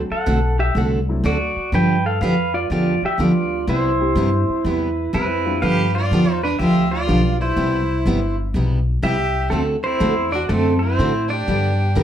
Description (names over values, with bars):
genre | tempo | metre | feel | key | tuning
country, western swing | 123 BPM | 4/4 | swing 67% on 8ths | C major | A4 = 440 Hz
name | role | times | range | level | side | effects
warm upright piano | accompaniment | 0.0-7.6, 11.5-12.0 s | D3 to G4 | -28 LUFS | left 4 dB | none
upright bass | bass | 0.0-12.0 s | G1 to A2 | -22 LUFS | left 1 dB | none
pedal steel guitar | melody | 0.1-12.0 s | C4 to G5 | -21 LUFS | right 1 dB | plate reverb
picked steel-string acoustic guitar | accompaniment | 0.3-12.0 s | C3 to A4 | -21 LUFS | right 1 dB | none
clear fiddle | second line | 5.1-12.0 s | A3 to G4 | -29 LUFS | right 1 dB | none
clean lap steel guitar | second line | 12.0 s | Bb4 | -24 LUFS | left 14 dB | none
room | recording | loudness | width
moderate club reverb, RT60 0.7 s | none | -17 LUFS | side -10 dB against mid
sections
0.0-12.0 A section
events
none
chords
0.0 D7; 1.7 G7; 3.7 Cmaj7; 5.6 G7; 7.6 Cmaj7; 9.5 D7; 11.5 G